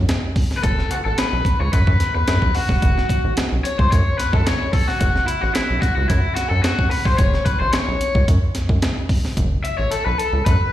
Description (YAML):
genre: funk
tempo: 110 BPM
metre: 4/4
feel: straight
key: F# minor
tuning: A4 = 440 Hz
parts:
  - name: rubbery square bass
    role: bass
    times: 0.0-10.6 s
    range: E#1 to F#2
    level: -20 LUFS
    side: equal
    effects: none
  - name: breakbeat sampler-style drum kit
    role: drums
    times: 0.1-10.6 s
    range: hi-hat, kick drum, snare drum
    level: -19 LUFS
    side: equal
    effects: none
  - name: raw garage guitar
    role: accompaniment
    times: 0.6-10.7 s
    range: E4 to E5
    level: -22 LUFS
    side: left 3 dB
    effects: overdrive, slapback echo
room: little or no reverb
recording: live gig heard through the venue's PA, recital hall reverb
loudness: -16 LUFS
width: side -13 dB against mid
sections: 0.0-10.7 A section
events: overdriven electric guitar solo 0.0-10.7; drum fill 9.4-10.7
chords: 0.0 F#m